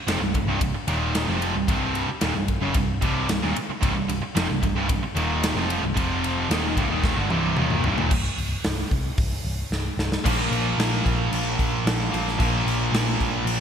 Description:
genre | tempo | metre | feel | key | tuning
hard rock | 112 BPM | 4/4 | straight | C minor | A4 = 439 Hz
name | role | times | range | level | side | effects
sludgy distorted guitar | riff | 0.1-13.6 s | C2 to Bb3 | -30 LUFS | left 8 dB | overdrive
tight distorted guitar | riff | 0.1-13.6 s | C2 to Bb3 | -28 LUFS | right 9 dB | distortion
tight distorted guitar | riff | 0.1-13.6 s | C2 to Bb3 | -29 LUFS | left 1 dB | distortion
hollow-body short-scale picked electric bass | bass | 0.1-13.6 s | C1 to C2 | -28 LUFS | equal | none
big rock drum kit | drums | 0.1-13.6 s | crash cymbal, hi-hat, kick drum, ride cymbal, snare drum, toms | -26 LUFS | equal | gated reverb
room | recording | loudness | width
moderate lush hall reverb, RT60 1.6 s, small room ambience | bright 1980s-style digital production | -21 LUFS | side -8 dB against mid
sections
0.0-8.1 A section; 8.1-10.3 B section; 10.3-13.6 C section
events
drum fill 7.0-8.1, 9.7-10.3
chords
0.0 Cm; 6.0 F5; 6.5 Cm; 8.1 N.C.; 10.3 Bb5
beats
0.08 0.61 1.15 | 1.68 2.22 2.75 3.29 | 3.82 4.36 4.89 5.43 | 5.96 6.50 7.04 7.57 | 8.11 8.64 9.18 9.72 | 10.25 10.79 11.32 11.86 | 12.40 12.94 13.47

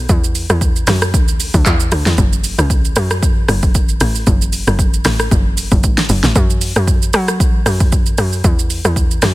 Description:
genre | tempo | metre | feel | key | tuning
amapiano | 115 BPM | 4/4 | swing 55% on 16ths | F# minor | A4 = 440 Hz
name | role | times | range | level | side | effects
tight log drum bass | bass | 0.0-9.3 s | F#1 to F#3 | -16 LUFS | equal | none
deep house drum kit | drums | 0.1-9.3 s | handclaps, hi-hat, kick drum, rim click, shaker, snare drum | -14 LUFS | equal | overdrive, soft clipping on snare
room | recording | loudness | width
little or no reverb | dense, heavily limited modern master | -12 LUFS | side -18 dB against mid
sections
0.0-9.3 A section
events
none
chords
none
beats
| 0.10 0.62 1.14 1.66 | 2.18 2.70 3.23 3.75 | 4.27 4.79 5.31 5.83 | 6.36 6.88 7.40 7.92 | 8.44 8.96

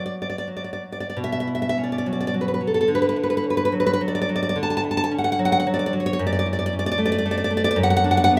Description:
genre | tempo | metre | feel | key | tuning
romantic piece for solo classical guitar | 81-116 BPM | 3/4 | rubato | unclear | A4 = 440 Hz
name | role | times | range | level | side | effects
nylon-string guitar | solo | 0.0-8.4 s | F#2 to A5 | -22 LUFS | equal | none
room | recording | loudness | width
moderate recital hall reverb, RT60 1.3 s | none | -22 LUFS | mono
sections
0.0-1.2 A section; 1.2-8.4 B section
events
none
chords
0.0 D; 1.2 B5; 2.9 Dmaj13; 6.2 Dmaj9/F#; 7.8 N.C.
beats
0.48 | 1.18 1.77 2.34 | 2.89 3.46 4.02 | 4.57 5.12 5.67 | 6.21 6.74 7.26 | 7.79 8.32

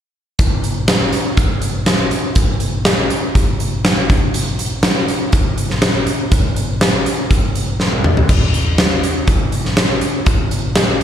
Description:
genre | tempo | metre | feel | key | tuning
rock | 122 BPM | 4/4 | straight | none | none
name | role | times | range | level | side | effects
huge arena drum kit | drums | 0.4-11.0 s | crash cymbal, hi-hat, kick drum, snare drum, toms | -13 LUFS | equal | none
room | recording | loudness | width
light reverb | live gig heard through the venue's PA, recital hall reverb | -14 LUFS | side -10 dB against mid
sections
0.4-11.0 A section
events
drum fill 7.8-8.3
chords
none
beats
| 0.39 0.88 1.37 1.87 | 2.36 2.85 3.35 3.84 | 4.33 4.83 5.32 5.82 | 6.31 6.80 7.30 7.79 | 8.29 8.78 9.28 9.77 | 10.26 10.76

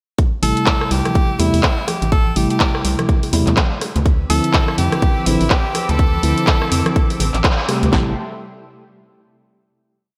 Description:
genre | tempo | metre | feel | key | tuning
deep house | 124 BPM | 4/4 | swing 59% on 16ths | A minor | A4 = 437 Hz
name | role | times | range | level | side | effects
house drum kit | drums | 0.2-8.1 s | handclaps, kick drum, snare drum | -19 LUFS | equal | studio reverb
house drum kit | drums | 0.2-7.9 s | handclaps, hi-hat, rim click | -24 LUFS | equal | studio reverb, gated reverb
edgy tenor saxophone | melody | 0.4-7.4 s | E4 to A4 | -26 LUFS | equal | digital delay
mellow tine electric piano | stabs | 0.4-8.1 s | C3 to G4 | -24 LUFS | equal | sidechain pumping, digital delay
organ-like FM bass | bass | 0.4-8.2 s | A1 to F2 | -21 LUFS | equal | sidechain pumping
congas and bongos | percussion | 0.9-7.9 s | none | -30 LUFS | equal | none
warm analog pad | sustained chords | 4.1-8.2 s | C4 to E6 | -32 LUFS | equal | chorus, tremolo, sidechain pumping
dark studio violin section | texture | 4.1-7.9 s | B4 to B5 | -36 LUFS | equal | none
room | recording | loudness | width
light reverb, digital ambience | bright 1980s-style digital production | -17 LUFS | mono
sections
0.2-7.9 drop; 7.9-9.9 final chord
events
drop 0.2-7.9; band accent 7.4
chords
0.2 Am7; 3.8 Dm9; 7.9 Am7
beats
| 0.18 0.67 1.15 1.64 | 2.12 2.60 3.09 3.57 | 4.06 4.54 5.02 5.51 | 5.99 6.48 6.96 7.44 | 7.93

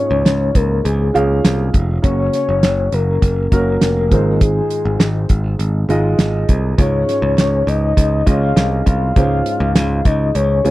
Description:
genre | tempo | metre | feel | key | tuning
piano-driven pop | 101 BPM | 4/4 | straight | Db major | A4 = 440 Hz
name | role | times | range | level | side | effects
soft octave-layered synth lead | melody | 0.0-10.7 s | Ab4 to F5 | -19 LUFS | left 2 dB | chorus, tremolo
warm upright piano | accompaniment | 0.0-10.7 s | Ab2 to F5 | -21 LUFS | right 2 dB | none
modern bright picked electric bass | bass | 0.1-10.7 s | F1 to Db2 | -17 LUFS | equal | none
damped 70s drum kit | drums | 0.3-10.7 s | hi-hat, kick drum, snare drum | -14 LUFS | equal | none
room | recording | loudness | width
little or no reverb | dry, close 1970s-style studio recording | -13 LUFS | side -17 dB against mid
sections
0.0-10.7 A section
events
none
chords
0.0 Db; 2.0 Gb; 4.1 Ab6; 6.8 Db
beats
0.25 0.85 1.44 | 2.03 2.63 3.22 3.82 | 4.41 5.00 5.60 6.19 | 6.79 7.38 7.97 8.57 | 9.16 9.76 10.35

